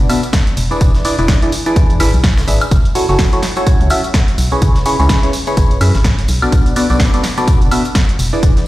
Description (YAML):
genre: piano house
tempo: 126 BPM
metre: 4/4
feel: swing 58% on 16ths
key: unclear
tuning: A4 = 440 Hz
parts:
  - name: barking FM electric piano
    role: riff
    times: 0.0-8.6 s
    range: B2 to E5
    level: -17 LUFS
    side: equal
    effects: phaser, sidechain pumping, tape echo
  - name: organ-like FM bass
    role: bass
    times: 0.0-8.5 s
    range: E1 to F#2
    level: -15 LUFS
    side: equal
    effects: sidechain pumping
  - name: tambourine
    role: percussion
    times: 0.0-8.6 s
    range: none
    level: -31 LUFS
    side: left 1 dB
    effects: none
  - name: breakbeat sampler-style drum kit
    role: drums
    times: 0.1-8.7 s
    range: hi-hat, snare drum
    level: -29 LUFS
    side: equal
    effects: high-pass filter on hats, high-pass filter on snare
  - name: punchy analog drum machine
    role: drums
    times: 0.1-8.6 s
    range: hi-hat, snare drum, woodblock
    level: -21 LUFS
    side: equal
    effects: none
  - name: electronic kick drum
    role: drums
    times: 0.3-8.5 s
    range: none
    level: -13 LUFS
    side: equal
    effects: none
room: light reverb, digital ambience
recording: played on a big sound system in a bare room, stone room reverb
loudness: -11 LUFS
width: side -16 dB against mid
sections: 0.0-8.7 A section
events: none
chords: 0.0 Bm7; 0.6 E7; 2.7 F#m7; 4.6 C#m7; 6.3 Bm7